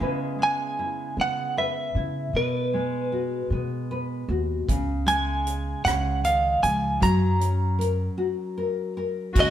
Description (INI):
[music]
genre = acoustic folk-pop ballad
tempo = 51 BPM (dotted quarters)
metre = 6/8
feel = straight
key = unclear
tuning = A4 = 441 Hz
[part]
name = nylon-string guitar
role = accompaniment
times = 0.0-9.5 s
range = B2 to B4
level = -29 LUFS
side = left 2 dB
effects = none
[part]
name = upright bass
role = bass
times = 0.0-9.5 s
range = C#2 to C#3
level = -28 LUFS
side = equal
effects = none
[part]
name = direct-recorded clean electric guitar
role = melody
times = 0.4-9.5 s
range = B4 to A#5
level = -25 LUFS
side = right 1 dB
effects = tremolo
[part]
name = natural country drum kit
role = drums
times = 4.7-9.5 s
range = crash cymbal, hi-hat, kick drum, rim click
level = -27 LUFS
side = right 1 dB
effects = none
[part]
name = dark cello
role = second line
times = 9.3-9.5 s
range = F#4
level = -24 LUFS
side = left 3 dB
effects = none
[sound]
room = wet stone room reverb, RT60 1.2 s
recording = band playing live in one room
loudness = -23 LUFS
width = side -11 dB against mid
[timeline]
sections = 0.0-9.4 A section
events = break 8.2-9.4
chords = 0.0 C#m7; 2.4 G#m7/B; 4.7 C#7; 7.0 F#